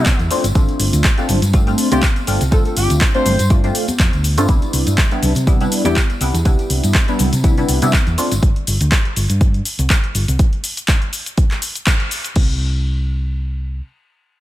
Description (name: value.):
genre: filtered disco house.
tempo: 122 BPM.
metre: 4/4.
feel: swing 55% on 16ths.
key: unclear.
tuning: A4 = 440 Hz.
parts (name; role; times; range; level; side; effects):
mellow horn section; melody; 0.0-6.0 s; E4 to C5; -24 LUFS; equal; vintage 12-bit sampler grit, sidechain pumping, dub echo.
funky polysynth comp; accompaniment; 0.0-8.3 s; G3 to F4; -20 LUFS; equal; chorus, phaser, sidechain pumping.
hollow-body short-scale fingered electric bass; bass; 0.0-13.8 s; G1 to C3; -18 LUFS; equal; sidechain pumping.
electronic kick drum; drums; 0.1-12.5 s; none; -15 LUFS; equal; none.
punchy analog drum machine; drums; 0.1-12.5 s; crash cymbal, handclaps, hi-hat, shaker; -21 LUFS; left 1 dB; overdrive, sidechain pumping on hats, sidechain pumping on perc, sidechain pumping on cymbals.
tambourine and congas; percussion; 0.1-8.4 s; none; -27 LUFS; left 2 dB; sidechain pumping on perc.
room: little or no reverb.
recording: none.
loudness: -14 LUFS.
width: side -15 dB against mid.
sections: 0.0-12.4 A section; 12.4-14.4 B section.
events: drop 0.0-12.4; band accent 11.9.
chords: 0.3 G9sus4; 4.5 Cmaj9; 8.2 G9sus4; 12.4 N.C..